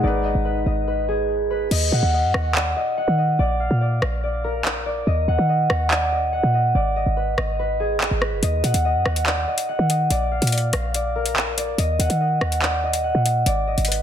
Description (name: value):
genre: hip hop, drill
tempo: 143 BPM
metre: 4/4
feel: half-time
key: Eb harmonic minor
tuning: A4 = 439 Hz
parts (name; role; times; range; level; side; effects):
- concert harp; melody; 0.0-14.0 s; Ab4 to Gb5; -22 LUFS; equal; low-pass filter, digital delay
- felt-muted upright piano; accompaniment; 0.0-1.7 s; Ab3 to Cb5; -28 LUFS; left 5 dB; low-pass filter
- short 808-style bass; bass; 0.0-14.0 s; F#1 to Eb3; -22 LUFS; equal; none
- drill drum kit; drums; 1.7-14.0 s; crash cymbal, handclaps, hi-hat, rim click; -24 LUFS; equal; none
room: light reverb, studio ambience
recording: dense, heavily limited modern master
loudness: -18 LUFS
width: side -9 dB against mid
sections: 0.0-1.7 A section; 1.7-14.0 B section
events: filter sweep 0.0-1.7; hi-hats muted 1.7-8.4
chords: 0.0 Abm; 1.7 Ebm; 3.4 Bb; 5.1 Eb5; 6.7 B6; 8.4 Ebm; 10.1 Bb; 11.8 Eb5; 13.5 Abm